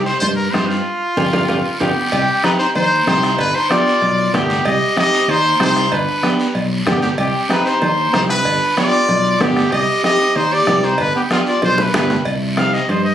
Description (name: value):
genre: latin, cumbia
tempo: 190 BPM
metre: 4/4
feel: straight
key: C harmonic minor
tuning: A4 = 441 Hz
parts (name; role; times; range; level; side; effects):
- clear trumpet; melody; 0.0-13.1 s; F4 to F5; -17 LUFS; left 1 dB; none
- semi-hollow electric guitar; accompaniment; 0.0-12.8 s; B3 to G4; -21 LUFS; right 2 dB; none
- fingered electric bass; bass; 0.0-13.1 s; G1 to G2; -21 LUFS; equal; none
- guiro; percussion; 0.1-13.1 s; none; -26 LUFS; right 1 dB; none
- congas; percussion; 0.2-13.1 s; none; -23 LUFS; left 1 dB; none
- cowbell and timbales; percussion; 0.2-13.0 s; none; -26 LUFS; right 3 dB; none
- bombo; percussion; 0.5-12.7 s; none; -26 LUFS; left 1 dB; none
- growling clarinet; second line; 1.8-12.2 s; B3 to G4; -21 LUFS; equal; none
room: moderate small room reverb, RT60 0.5 s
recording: recorded on a phone in the room, studio ambience, compression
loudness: -14 LUFS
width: side -10 dB against mid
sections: 0.0-2.1 A section; 2.1-12.3 B section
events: band accent 0.9-2.1; drum fill 11.6-12.3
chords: 0.0 Cm; 0.9 G7; 2.1 Cm; 3.4 G7; 4.7 Cm; 5.9 G; 7.2 Cm; 8.5 G7; 9.7 Cm; 11.0 G; 12.3 Cm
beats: 0.22 0.54 | 0.85 1.17 1.49 1.81 | 2.12 2.44 2.76 3.07 | 3.39 3.71 4.02 4.34 | 4.66 4.97 5.29 5.61 | 5.92 6.24 6.56 6.87 | 7.19 7.50 7.82 8.14 | 8.46 8.77 9.09 9.40 | 9.72 10.04 10.36 10.67 | 10.99 11.30 11.62 11.94 | 12.26 12.57 12.89